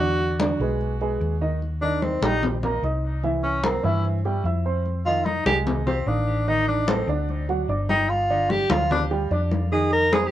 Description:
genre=Afro-Cuban jazz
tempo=148 BPM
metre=4/4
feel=straight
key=Eb major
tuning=A4 = 442 Hz
part: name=warm tenor saxophone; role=melody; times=0.0-10.3 s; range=C4 to Bb4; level=-25 LUFS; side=equal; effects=tape echo
part: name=warm baby grand piano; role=accompaniment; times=0.0-10.3 s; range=D3 to E6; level=-27 LUFS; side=right 3 dB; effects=none
part: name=hollow-body short-scale fingered electric bass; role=bass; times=0.0-10.3 s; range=G1 to G2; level=-26 LUFS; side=equal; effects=none
part: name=congas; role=percussion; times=0.2-10.3 s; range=none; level=-28 LUFS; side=left 3 dB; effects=none
room=moderate club reverb, RT60 0.6 s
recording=worn, warbling old tape, cassette tape, warbly pitch drift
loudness=-21 LUFS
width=side -12 dB against mid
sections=0.0-1.6 A section; 1.6-10.3 B section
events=tenor saxophone solo 1.6-10.3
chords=0.0 E9; 1.6 Eb6; 3.2 C7; 4.9 Fm7; 6.5 Cm69/A; 7.3 D; 8.1 G5; 9.7 F5

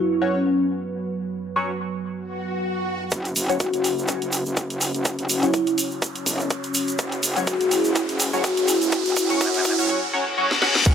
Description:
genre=bass house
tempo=124 BPM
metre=4/4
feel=swing 56% on 16ths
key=unclear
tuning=A4 = 440 Hz
part: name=vibraphone with soft mallets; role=melody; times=0.0-0.5, 3.6-9.9 s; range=C#4 to F#4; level=-23 LUFS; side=equal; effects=dub echo
part: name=dark analog pad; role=sustained chords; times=0.0-10.9 s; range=F#3 to C#5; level=-30 LUFS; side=equal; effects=chorus, sidechain pumping
part: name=band-passed chord stab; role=stabs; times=0.2-10.7 s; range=F#3 to C#5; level=-26 LUFS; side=left 1 dB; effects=phaser, analog chorus, sidechain pumping, dub echo
part: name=swell, riser, reverse cymbal and impact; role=sound effects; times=2.3-10.9 s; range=none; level=-27 LUFS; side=left 1 dB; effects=none
part: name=metallic wobble bass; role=bass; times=3.1-10.9 s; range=E1 to F#2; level=-27 LUFS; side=equal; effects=chorus, sidechain pumping, high-pass filter
part: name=electronic kick drum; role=drums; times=3.1-10.9 s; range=none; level=-22 LUFS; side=equal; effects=high-pass filter on kick, small room reverb
part: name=garage drum kit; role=drums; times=3.1-10.9 s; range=crash cymbal, hi-hat, ride cymbal, snare drum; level=-28 LUFS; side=equal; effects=small room reverb
part: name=egg shaker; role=percussion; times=3.1-10.9 s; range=none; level=-28 LUFS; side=right 2 dB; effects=none
room=light reverb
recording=high-pass filter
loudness=-20 LUFS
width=side -8 dB against mid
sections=0.0-3.1 A section; 3.1-10.9 B section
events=swell 2.3-3.1; build-up 3.1-10.9; riser 3.1-9.9; filter sweep on synth stab 3.1-10.9; drum fill 7.0-9.9, 10.5-10.9; reverse cymbal 9.9-10.9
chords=0.0 F#5

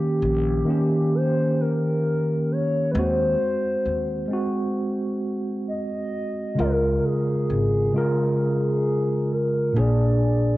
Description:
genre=lo-fi hip hop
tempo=66 BPM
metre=4/4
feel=swing 62% on 16ths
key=Db major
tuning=A4 = 440 Hz
part: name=hollow clarinet-like synth lead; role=melody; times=0.0-10.6 s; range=G4 to Eb5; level=-26 LUFS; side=left 1 dB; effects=chorus, cassette tape
part: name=mellow tine electric piano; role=accompaniment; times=0.0-10.6 s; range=Bb2 to Bb4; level=-22 LUFS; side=equal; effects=fast stereo tremolo, cassette tape
part: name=upright bass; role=bass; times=0.2-10.5 s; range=Ab1 to Eb2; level=-26 LUFS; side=equal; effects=tube saturation
room=moderate spring reverb, RT60 1.8 s, small room ambience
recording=home recording on cassette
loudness=-20 LUFS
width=side -17 dB against mid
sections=0.0-6.6 A section; 6.6-10.6 B section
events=none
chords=0.0 Eb7; 2.9 Ab7/Eb; 6.6 Db6; 9.8 Bb7

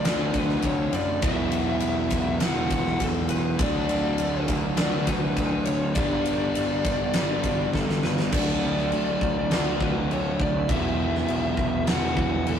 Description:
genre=rock, shoegaze and dream pop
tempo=102 BPM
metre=4/4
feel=straight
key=D major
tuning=A4 = 440 Hz
part: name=fuzz lead guitar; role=melody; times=0.0-12.6 s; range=A4 to F#5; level=-30 LUFS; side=left 2 dB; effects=distortion
part: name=cranked stack guitar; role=riff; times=0.0-8.3 s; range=G2 to E4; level=-37 LUFS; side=left 1 dB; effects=none
part: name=overdriven semi-hollow guitar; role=riff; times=0.0-12.6 s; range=E2 to G4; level=-33 LUFS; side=left 5 dB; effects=none
part: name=raw garage guitar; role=riff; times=0.0-12.6 s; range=G2 to E4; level=-27 LUFS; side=right 2 dB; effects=overdrive
part: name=fuzz picked electric bass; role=bass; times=0.0-12.6 s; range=E1 to F#2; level=-31 LUFS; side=equal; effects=overdrive
part: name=huge arena drum kit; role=drums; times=0.0-12.6 s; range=crash cymbal, kick drum, ride cymbal, snare drum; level=-28 LUFS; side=equal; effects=none
room=wet studio reverb, RT60 0.6 s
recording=rough rehearsal-room recording, tube saturation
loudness=-22 LUFS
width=side -8 dB against mid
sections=0.0-8.3 A section; 8.3-12.6 B section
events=drum fill 7.7-8.3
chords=0.0 D; 1.2 Esus2; 3.6 D; 6.0 G; 8.3 D; 10.7 Esus2

